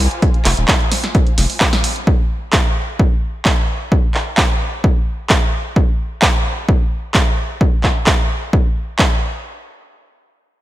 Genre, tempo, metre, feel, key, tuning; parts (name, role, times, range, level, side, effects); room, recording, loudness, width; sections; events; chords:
acid house; 130 BPM; 4/4; straight; F minor; A4 = 440 Hz
saturated sub bass; bass; 0.0-1.5 s; Eb1 to F1; -15 LUFS; equal; sidechain pumping
dark studio string section; texture; 0.0-2.1 s; F4 to Ab5; -32 LUFS; left 1 dB; sidechain pumping
punchy analog drum machine; drums; 0.1-9.1 s; handclaps, hi-hat, snare drum; -18 LUFS; right 1 dB
electronic kick drum; drums; 0.2-9.1 s; -15 LUFS; equal
little or no reverb; -14 LUFS; side -15 dB against mid
0.0-9.5 A section
fade-out on string section 0.0-2.1
0.0 Fm